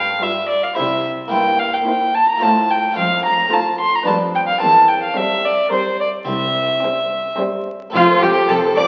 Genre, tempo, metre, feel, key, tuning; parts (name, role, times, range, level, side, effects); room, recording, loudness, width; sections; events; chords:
classical, baroque-style concerto movement with solo episodes; 109 BPM; 3/4; straight; F major; A4 = 441 Hz
warm violin; melody; 0.0-8.9 s; F4 to C6; -18 LUFS; equal
harpsichord; accompaniment; 0.0-8.9 s; C2 to C5; -28 LUFS; equal
warm chamber cello section; bass; 0.0-8.8 s; C2 to C3; -30 LUFS; equal
warm chamber violin section; melody; 0.2-8.9 s; Bb4 to D6; -28 LUFS; equal
rich chamber violin section; second line; 0.2-8.8 s; C4 to D5; -27 LUFS; equal
dark chamber viola section; accompaniment; 0.2-8.9 s; G3 to C5; -28 LUFS; equal
rich chamber double bass section; bass; 7.9-8.8 s; F1; -36 LUFS; equal
wet recital hall reverb, RT60 1.6 s; very old 78 rpm record, vinyl crackle, nothing above 7.6 kHz; -17 LUFS; mono
0.0-7.9 A section
0.0 G7; 0.8 C; 1.3 C7/G; 2.4 F/A; 3.0 F; 4.1 G7/F; 4.6 C7/E; 6.3 C; 7.9 F